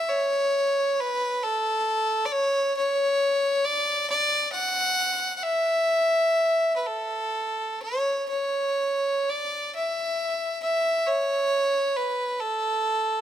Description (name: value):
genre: celtic folk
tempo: 40-46 BPM (dotted quarters)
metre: 6/8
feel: rubato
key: unclear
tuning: A4 = 442 Hz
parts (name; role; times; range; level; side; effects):
- bright fiddle; solo; 0.0-13.2 s; A4 to F#5; -22 LUFS; equal; none
room: light reverb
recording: close, detailed microphones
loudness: -22 LUFS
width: side -11 dB against mid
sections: 0.0-8.3 A section; 8.3-13.2 A section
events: none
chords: none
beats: | 0.11 1.44 | 2.76 4.09 | 5.45 6.85 | 8.31 9.72 | 11.05 12.37